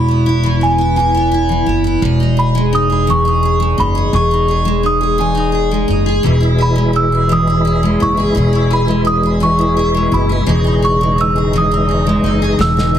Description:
six-eight pop ballad; 57 BPM (dotted quarters); 6/8; straight; E major; A4 = 439 Hz
celesta; melody; 0.0-13.0 s; G#5 to E6; -18 LUFS; right 1 dB; ping-pong delay
picked steel-string acoustic guitar; accompaniment; 0.0-13.0 s; E2 to G#4; -16 LUFS; equal; double-tracked left and right
upright bass; bass; 0.0-13.0 s; E1 to F#1; -16 LUFS; equal
bright tonewheel organ; sustained chords; 6.3-13.0 s; B2 to E4; -20 LUFS; left 1 dB; chorus vibrato, fast rotary speaker
snare drum; drums; 12.6-12.9 s; -20 LUFS; left 1 dB
studio reverb; heavily compressed radio sound, multiband compression; -11 LUFS; side -10 dB against mid
0.0-13.0 A section
drum fill 12.6-13.0
0.0 E; 2.0 C#madd9/E; 6.2 E; 10.5 C#madd9/E
0.96 | 2.02 3.07 | 4.13 5.19 | 6.24 7.30 | 8.36 9.42 | 10.48 11.53 | 12.59

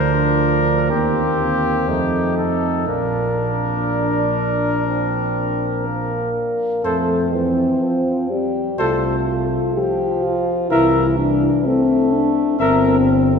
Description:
classical, brass quintet; 62 BPM; 4/4; rubato; Bb major, F major from 6.8 s; A4 = 440 Hz
clear trumpet; melody; 0.0-13.0 s; G4 to E5; -24 LUFS; left 5 dB
clear flugelhorn; second line; 0.0-13.0 s; C4 to Bb4; -25 LUFS; right 3 dB
dark French horn; accompaniment; 0.0-13.4 s; Bb3 to G4; -20 LUFS; left 3 dB
warm trombone; accompaniment; 0.0-13.3 s; E3 to D4; -24 LUFS; equal
mellow tuba; bass; 0.0-13.4 s; G1 to F2; -23 LUFS; right 4 dB
wet church reverb, RT60 3.0 s; heard from further back in the room; -16 LUFS; side -6 dB against mid
0.0-6.8 A section; 6.8-13.4 B section
0.0 Bb/D; 0.9 Cm7/Eb; 1.9 F7; 2.9 Bb; 6.8 F; 10.7 C7
0.91 1.88 | 2.87 3.87 4.87 5.86 | 6.84 7.82 8.79 9.75 | 10.71 11.65 12.60

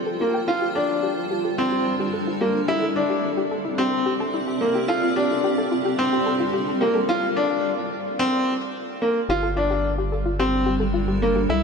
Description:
piano and strings electronica; 109 BPM; 4/4; straight; G dorian; A4 = 437 Hz
granular cloud pad; sustained chords; 0.0-11.6 s; G3 to A5; -27 LUFS; right 1 dB; built-in reverb
round analog bass; bass; 0.0-11.6 s; F1 to C2; -32 LUFS; equal; tube saturation, high-pass filter
soft round pluck; arpeggios; 0.1-11.6 s; E4 to G5; -29 LUFS; left 3 dB; chorus, cassette tape, ping-pong delay
bright upright piano; riff; 0.2-11.6 s; Bb3 to F4; -22 LUFS; equal; ping-pong delay
wet huge ambient reverb, RT60 6.8 s; -20 LUFS; side -5 dB against mid
0.0-9.3 A section; 9.3-11.6 B section
build-up 0.0-9.3; break 7.1-9.3; drop 9.3-11.6
0.5 Gm7; 2.7 C7; 4.9 Gm7; 7.1 F5; 9.3 Gm7
| 0.49 1.04 1.59 2.14 | 2.69 3.24 3.79 4.34 | 4.89 5.44 5.99 6.54 | 7.09 7.64 8.19 8.74 | 9.29 9.84 10.39 10.95 | 11.49

